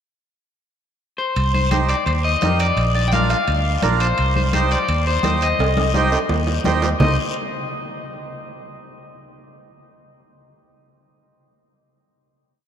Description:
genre	latin, cumbia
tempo	170 BPM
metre	4/4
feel	straight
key	C minor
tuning	A4 = 440 Hz
part	electric guitar at the edge of break-up	melody	1.2-7.2 s	C5 to G5	-22 LUFS	left 3 dB	spring reverb
part	fingered electric bass	bass	1.4-7.2 s	Bb1 to F2	-20 LUFS	equal	none
part	guiro	percussion	1.4-7.1 s	none	-34 LUFS	left 9 dB	none
part	timbales	percussion	1.4-7.1 s	none	-29 LUFS	right 5 dB	none
part	congas	percussion	1.5-7.1 s	none	-26 LUFS	left 2 dB	none
part	accordion	accompaniment	1.7-7.2 s	D4 to Eb5	-24 LUFS	right 4 dB	none
room	wet cathedral reverb, RT60 5.5 s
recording	in a vast, echoing space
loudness	-16 LUFS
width	side -8 dB against mid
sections	0.0-1.4 pickup bar; 1.4-7.0 A section; 7.0-8.4 final chord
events	drum fill 5.6-7.0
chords	0.0 N.C.; 1.4 Cm; 2.8 Bb; 4.2 Cm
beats	0.30 0.66 1.01 | 1.36 1.71 2.06 2.42 | 2.77 3.12 3.48 3.83 | 4.18 4.53 4.88 5.24 | 5.59 5.94 6.29 6.65 | 7.00

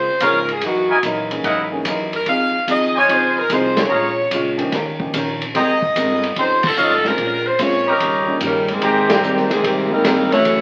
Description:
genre	jazz, big band swing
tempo	146 BPM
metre	4/4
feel	swing 67% on 8ths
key	Ab major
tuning	A4 = 440 Hz
part	bright saxophone section	melody	0.0-10.6 s	Eb3 to F5	-21 LUFS	equal	none
part	archtop guitar, miked and amplified	accompaniment	0.0-10.6 s	Gb2 to Bb4	-25 LUFS	equal	none
part	upright bass	bass	0.0-10.6 s	F1 to Bb2	-36 LUFS	equal	none
part	warm grand piano	accompaniment	0.2-10.6 s	Fb3 to A4	-29 LUFS	equal	none
part	clear trumpet section	stabs	0.2-9.5 s	Fb4 to Bb5	-20 LUFS	equal	none
part	vintage drum kit	drums	0.2-10.6 s	crash cymbal, hi-hat, kick drum, ride cymbal, snare drum	-26 LUFS	equal	none
part	warm trombone section	second line	8.0-10.6 s	Bb2 to Db4	-25 LUFS	equal	none
room	wet large studio reverb, RT60 0.9 s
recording	very old 78 rpm record, vinyl crackle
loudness	-18 LUFS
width	mono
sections	0.0-8.8 A section; 8.8-10.6 B section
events	band accent 3.7, 6.6, 9.0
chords	0.0 Db6; 0.6 Gb13; 2.3 Fm7; 3.9 Bbm7; 4.7 Eb7; 5.5 Abmaj9; 6.4 F7b13; 7.2 Bbm7; 8.0 Eb7; 8.8 Abmaj9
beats	0.21 | 0.62 1.03 1.44 1.85 | 2.26 2.67 3.08 3.49 | 3.90 4.31 4.72 5.13 | 5.54 5.95 6.36 6.77 | 7.18 7.59 8.00 8.41 | 8.82 9.23 9.64 10.05 | 10.46

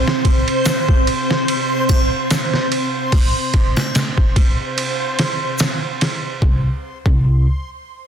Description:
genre	trip hop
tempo	73 BPM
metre	4/4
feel	swing 55% on 16ths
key	unclear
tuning	A4 = 440 Hz
part	string machine, cellos	sustained chords	0.0-6.4 s	C4	-24 LUFS	equal	ensemble chorus
part	backwards swelling texture	texture	0.0-6.4 s	C5	-23 LUFS	right 2 dB	built-in reverb
part	trip hop sampler-style drum kit	drums	0.1-7.2 s	hi-hat, kick drum, ride cymbal, snare drum	-17 LUFS	equal	none
part	egg shaker and triangle	percussion	0.7-5.8 s	none	-30 LUFS	left 4 dB	none
part	upright bass	bass	6.4-7.4 s	C2	-16 LUFS	equal	tube saturation
room	digital ambience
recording	dense, heavily limited modern master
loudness	-15 LUFS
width	side -8 dB against mid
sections	0.0-6.4 A section; 6.4-8.1 B section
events	none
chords	none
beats	0.66 1.48 2.31 | 3.13 3.95 4.77 5.59 | 6.42 7.24

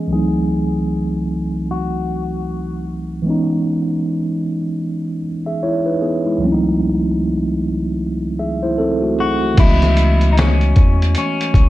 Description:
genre	lo-fi hip hop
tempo	76 BPM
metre	4/4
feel	swing 59% on 16ths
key	C# minor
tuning	A4 = 441 Hz
part	electric guitar at the edge of break-up	melody	0.0-2.8, 9.2-11.7 s	C#4 to G#4	-23 LUFS	left 4 dB	low-pass filter, tape echo
part	mellow tine electric piano	accompaniment	0.0-11.7 s	B#1 to E5	-18 LUFS	right 1 dB	medium stereo tremolo, cassette tape, low-pass filter
part	deep dub fingered electric bass	bass	9.6-11.7 s	C#2 to E2	-14 LUFS	equal	none
part	lo-fi sampler-style drum kit	drums	9.6-11.7 s	crash cymbal, hi-hat, kick drum, snare drum	-15 LUFS	equal	none
room	moderate studio reverb, RT60 0.6 s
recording	dark, warm production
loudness	-15 LUFS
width	side -16 dB against mid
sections	0.0-9.6 A section; 9.6-11.7 B section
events	filter sweep 0.0-9.6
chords	0.1 G#7b9b13/B#; 3.3 C#m7; 6.4 G#7b9b13/B#; 9.6 C#m7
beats	| 0.10 0.89 1.68 2.47 | 3.26 4.05 4.84 5.63 | 6.42 7.21 8.00 8.79 | 9.58 10.37 11.15

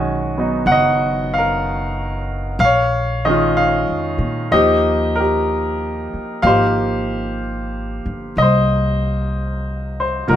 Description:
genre	jazz ballad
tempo	62 BPM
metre	4/4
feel	swing 69% on 8ths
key	unclear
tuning	A4 = 440 Hz
part	clear baby grand piano	accompaniment	0.0-10.4 s	D#3 to Ab5	-17 LUFS	equal	none
part	upright bass	bass	0.0-10.4 s	F#1 to Bb2	-22 LUFS	equal	none
room	light reverb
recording	minimal, uncompressed stereo recording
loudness	-16 LUFS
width	side -10 dB against mid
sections	0.0-10.4 A section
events	none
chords	0.0 Bmaj9; 2.6 Bbm7; 4.5 Ebadd9; 6.4 Abmaj9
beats	0.67 1.63 | 2.60 3.56 4.51 5.47 | 6.43 7.40 8.36 9.32 | 10.28

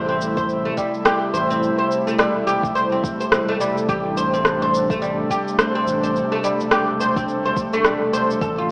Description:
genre	organic downtempo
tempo	106 BPM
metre	4/4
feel	swing 58% on 16ths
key	A minor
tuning	A4 = 442 Hz
part	airy breathy pad	sustained chords	0.0-8.7 s	C3 to F4	-26 LUFS	equal	chorus, vintage 12-bit sampler grit, sidechain pumping
part	oud	arpeggios	0.0-8.7 s	G3 to C5	-23 LUFS	equal	vintage 12-bit sampler grit, digital delay
part	round analog bass	bass	0.0-8.7 s	E1 to A1	-36 LUFS	equal	sidechain pumping
part	electronic shaker and rim click	drums	0.2-8.5 s	none	-24 LUFS	equal	none
part	electronic kick drum	drums	0.4-8.5 s	none	-30 LUFS	equal	none
room	wet scoring stage reverb, RT60 1.6 s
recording	worn, warbling old tape, cassette tape, warbly pitch drift, small speaker sound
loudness	-20 LUFS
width	mono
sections	0.0-8.7 A section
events	none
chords	0.0 Am7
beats	0.49 1.05 | 1.62 2.19 2.75 3.32 | 3.88 4.45 5.01 5.58 | 6.15 6.71 7.28 7.85 | 8.41

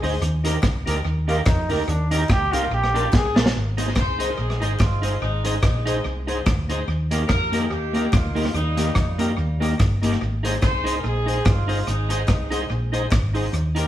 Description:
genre	ska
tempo	144 BPM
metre	4/4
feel	swing 56% on 8ths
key	unclear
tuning	A4 = 440 Hz
part	brilliant trombone	melody	0.0-3.4 s	D4 to Ab4	-25 LUFS	equal	none
part	electric guitar at the edge of break-up	accompaniment	0.0-13.9 s	Bb3 to C5	-27 LUFS	right 1 dB	tape echo
part	percussive tonewheel organ	stabs	0.0-13.9 s	D4 to Eb5	-31 LUFS	left 2 dB	overdrive, slow rotary speaker
part	hollow-body short-scale fingered electric bass	bass	0.0-13.9 s	G1 to F2	-24 LUFS	equal	none
part	crunchy breakbeat drum kit	drums	0.0-13.8 s	hi-hat, kick drum, rim click, snare drum	-23 LUFS	equal	tape echo
part	group handclap	percussion	0.6-13.2 s	none	-44 LUFS	left 2 dB	none
part	warm horn section	melody	4.0-13.1 s	G3 to C5	-28 LUFS	equal	none
room	wet stone room reverb, RT60 0.9 s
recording	band playing live in one room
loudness	-19 LUFS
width	side -12 dB against mid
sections	0.0-3.5 A section; 3.5-13.9 B section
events	trombone solo 0.0-3.5; drum fill 3.1-3.5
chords	0.2 Eb; 2.7 Bb; 3.5 Ab; 6.9 Eb; 10.2 Ab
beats	| 0.21 0.63 1.05 1.46 | 1.88 2.30 2.71 3.13 | 3.55 3.96 4.38 4.80 | 5.22 5.63 6.05 6.47 | 6.88 7.30 7.71 8.13 | 8.55 8.96 9.38 9.79 | 10.21 10.62 11.04 11.45 | 11.87 12.29 12.70 13.12 | 13.53

